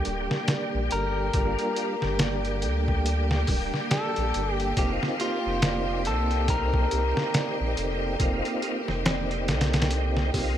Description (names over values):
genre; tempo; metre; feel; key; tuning
trip hop; 70 BPM; 4/4; swing 59% on 16ths; unclear; A4 = 441 Hz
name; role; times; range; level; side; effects
electric guitar at the edge of break-up; melody; 0.0-10.6 s; F4 to Bb4; -31 LUFS; left 1 dB; dub echo
tonewheel organ; accompaniment; 0.0-10.6 s; G3 to G4; -31 LUFS; right 1 dB; chorus vibrato, fast rotary speaker, harmonic tremolo, tape echo
clear symphonic string section; sustained chords; 0.0-10.6 s; Bb3 to G4; -35 LUFS; left 3 dB; none
large celesta; arpeggios; 0.0-10.6 s; G4 to G5; -35 LUFS; right 4 dB; dub echo
soft dub sub bass; bass; 0.0-10.6 s; D1 to D2; -28 LUFS; equal; none
trip hop sampler-style drum kit; drums; 0.1-10.6 s; hi-hat, kick drum, snare drum; -27 LUFS; equal; small room reverb
room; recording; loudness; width
moderate plate reverb, RT60 2.5 s; bright 1980s-style digital production; -23 LUFS; side -10 dB against mid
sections
0.0-10.6 A section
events
none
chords
0.0 Gm7; 4.8 F7sus4